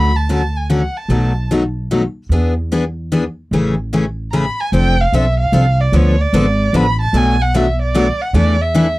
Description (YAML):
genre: acoustic string swing (jazz manouche)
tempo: 149 BPM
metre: 3/4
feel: swing 62% on 8ths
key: unclear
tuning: A4 = 438 Hz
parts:
  - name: warm violin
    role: melody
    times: 0.0-1.5, 4.3-9.0 s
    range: C#5 to B5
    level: -19 LUFS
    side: right 2 dB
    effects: none
  - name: picked steel-string acoustic guitar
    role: accompaniment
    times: 0.0-8.9 s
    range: B2 to A4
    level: -16 LUFS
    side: left 2 dB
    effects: none
  - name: upright bass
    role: bass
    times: 0.0-9.0 s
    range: F1 to E2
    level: -16 LUFS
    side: right 1 dB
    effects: none
room: little or no reverb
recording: dry, close 1970s-style studio recording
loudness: -13 LUFS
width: side -19 dB against mid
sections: 0.0-4.7 A section; 4.7-9.0 B section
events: none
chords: 0.0 Dmaj7; 1.1 B7; 2.3 E7; 3.5 Amaj7; 4.7 F6; 5.9 Dm6; 7.1 Bm7; 8.3 E7sus4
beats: 0.29 0.69 | 1.10 1.50 1.90 | 2.31 2.71 3.11 | 3.52 3.92 4.32 | 4.72 5.13 5.53 | 5.93 6.33 6.73 | 7.14 7.54 7.94 | 8.34 8.74